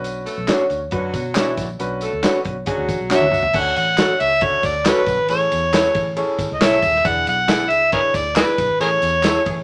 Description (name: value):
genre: uptempo 1960s-style soul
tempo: 137 BPM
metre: 4/4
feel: straight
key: A major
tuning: A4 = 440 Hz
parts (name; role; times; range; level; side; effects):
- clear grand piano; accompaniment; 0.0-9.5 s; C#4 to E5; -28 LUFS; equal; none
- vintage muted fingered electric bass; bass; 0.0-9.6 s; D#1 to B2; -32 LUFS; equal; none
- natural country drum kit; drums; 0.0-9.6 s; crash cymbal, hi-hat, kick drum, ride cymbal, snare drum, toms; -26 LUFS; equal; none
- tambourine and handclaps; percussion; 0.0-9.6 s; none; -32 LUFS; equal; none
- warm saxophone section; second line; 0.3-3.4, 9.2-9.5 s; E3 to A4; -30 LUFS; equal; none
- mellow electric guitar; stabs; 0.5-9.4 s; D4 to D5; -23 LUFS; equal; none
- overdriven harmonica; melody; 3.2-9.6 s; F#4 to F#5; -20 LUFS; equal; none
room: wet studio reverb, RT60 0.5 s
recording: none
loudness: -18 LUFS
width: mono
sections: 0.0-3.5 A section; 3.5-9.6 B section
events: drum fill 3.1-3.5; band accent 8.8-9.6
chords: 0.0 Bmadd9; 3.5 Dmaj7; 5.3 Amaj7; 7.0 E7; 8.8 Amaj7